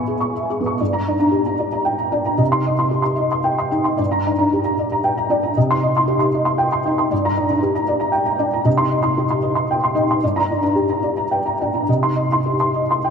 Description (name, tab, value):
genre	neoclassical minimalist piano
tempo	114 BPM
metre	3/4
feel	rubato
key	unclear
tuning	A4 = 441 Hz
part	felt-muted upright piano	solo	0.0-13.1 s	G2 to C#6	-16 LUFS	equal	ensemble chorus, ping-pong delay
room	wet lush hall reverb, RT60 2.6 s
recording	dreamy mix soaked in reverb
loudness	-16 LUFS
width	side -6 dB against mid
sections	0.8-13.1 A section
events	none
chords	0.0 E6; 0.8 Gm; 2.4 Cm; 4.0 Gm; 5.6 Cm; 7.1 Gm; 8.7 Cm; 10.2 Gm; 11.9 Cm